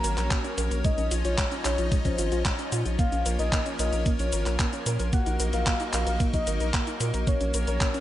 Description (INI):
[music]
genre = italo disco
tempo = 112 BPM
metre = 4/4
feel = straight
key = Bb minor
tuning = A4 = 442 Hz
[part]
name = soft octave-layered synth lead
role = melody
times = 0.0-8.0 s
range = C5 to Bb5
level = -32 LUFS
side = left 2 dB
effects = chorus, tremolo, tape echo
[part]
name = lush unison pad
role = sustained chords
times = 0.0-8.0 s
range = F3 to Eb4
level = -33 LUFS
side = left 1 dB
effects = chorus
[part]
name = soft round pluck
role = arpeggios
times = 0.0-8.0 s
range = Ab3 to Bb4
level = -34 LUFS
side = right 2 dB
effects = chorus, tape echo
[part]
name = round analog bass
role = bass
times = 0.0-7.8 s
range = Ab1 to Bb2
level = -28 LUFS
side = equal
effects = none
[part]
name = detuned 8-bit digital drum machine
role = drums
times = 0.0-8.0 s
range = cabasa, handclaps, hi-hat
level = -31 LUFS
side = left 1 dB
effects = gated reverb
[part]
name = electronic kick drum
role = drums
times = 0.3-7.9 s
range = none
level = -26 LUFS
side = equal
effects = none
[sound]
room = little or no reverb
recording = nothing above 10.7 kHz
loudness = -24 LUFS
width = side -13 dB against mid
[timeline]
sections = 0.0-8.0 A section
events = none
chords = 0.0 Gb; 0.8 Dbadd9/Bb; 3.0 Bbm; 5.1 Ebm/Bb; 7.3 Gb/Bb